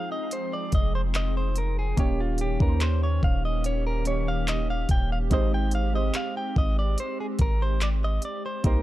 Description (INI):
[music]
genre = contemporary R&B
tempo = 72 BPM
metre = 4/4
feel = straight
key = unclear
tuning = A4 = 444 Hz
[part]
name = direct-recorded clean electric guitar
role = melody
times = 0.0-8.8 s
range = F4 to G5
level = -32 LUFS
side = equal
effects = digital delay
[part]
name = warm analog keys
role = accompaniment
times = 0.0-8.8 s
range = Ab3 to Db5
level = -33 LUFS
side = right 3 dB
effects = chorus
[part]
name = hollow soft pad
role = sustained chords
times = 0.0-8.8 s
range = C3 to Ab4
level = -35 LUFS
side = left 1 dB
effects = ensemble chorus, sidechain pumping
[part]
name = smooth R&B drum kit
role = drums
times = 0.3-8.8 s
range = handclaps, hi-hat, kick drum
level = -25 LUFS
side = equal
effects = none
[part]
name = long sustained 808-style bass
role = bass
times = 0.7-8.8 s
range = Eb1 to Eb2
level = -26 LUFS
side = equal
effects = none
[sound]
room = little or no reverb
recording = dark, warm production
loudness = -23 LUFS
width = side -15 dB against mid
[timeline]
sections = 0.0-8.8 A section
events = break 0.0-0.3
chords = 0.0 Fm7; 2.0 Eb7; 5.3 Abmaj7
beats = 0.31 1.14 | 1.98 2.81 3.64 4.48 | 5.31 6.14 6.98 7.81 | 8.64